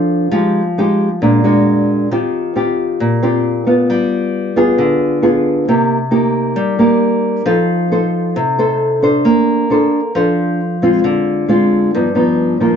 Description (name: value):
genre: bossa nova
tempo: 134 BPM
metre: 4/4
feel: straight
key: Bb major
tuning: A4 = 440 Hz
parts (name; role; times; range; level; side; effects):
- nylon-string guitar; solo; 0.0-12.8 s; G2 to C5; -12 LUFS; equal; none
room: wet small room reverb, RT60 0.6 s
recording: band playing live in one room, nothing above 7.5 kHz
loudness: -12 LUFS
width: side -7 dB against mid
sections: 0.0-12.8 A section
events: none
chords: 0.3 Fm9; 1.2 Bbaug7; 2.1 Eb69; 3.9 G7b9; 5.7 Cm7; 7.5 F7; 9.3 Bbmaj9; 11.0 Dm7b5; 11.9 G7alt